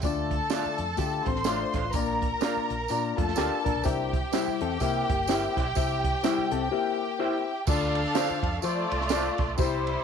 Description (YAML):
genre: uptempo 1960s-style soul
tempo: 126 BPM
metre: 4/4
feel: swing 58% on 8ths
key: unclear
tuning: A4 = 440 Hz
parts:
  - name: warm studio violin section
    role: second line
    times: 0.0-10.0 s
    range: G3 to C6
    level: -30 LUFS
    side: right 1 dB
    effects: none
  - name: dark upright piano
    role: accompaniment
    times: 0.0-10.0 s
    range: Bb2 to G5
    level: -31 LUFS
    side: left 10 dB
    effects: none
  - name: vintage muted fingered electric bass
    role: bass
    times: 0.0-10.0 s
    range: G1 to F3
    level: -33 LUFS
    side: right 1 dB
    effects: none
  - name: compact cocktail drum kit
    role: drums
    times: 0.0-10.0 s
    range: crash cymbal, hi-hat, kick drum, ride cymbal, snare drum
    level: -30 LUFS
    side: right 4 dB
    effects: none
  - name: tambourine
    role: percussion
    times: 0.0-9.7 s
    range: none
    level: -40 LUFS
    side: right 17 dB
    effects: none
  - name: electric guitar through a small old amp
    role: stabs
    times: 0.5-9.2 s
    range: E4 to F5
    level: -34 LUFS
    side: right 11 dB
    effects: lush chorus
  - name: hollow-body jazz guitar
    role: riff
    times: 1.0-7.4 s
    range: G3 to Bb4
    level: -31 LUFS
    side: left 12 dB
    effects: none
room: light reverb, studio ambience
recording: 1960s-style stereo with parts hard left and right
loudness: -25 LUFS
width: side -7 dB against mid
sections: 0.0-7.7 A section; 7.7-10.0 B section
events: break 6.7-7.7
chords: 0.0 Dm; 1.9 Bb; 3.9 C; 7.7 Dm; 8.6 F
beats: | 0.03 0.51 0.99 1.47 | 1.95 2.42 2.90 3.38 | 3.86 4.34 4.81 5.29 | 5.77 6.25 6.72 7.20 | 7.68 8.16 8.63 9.11 | 9.59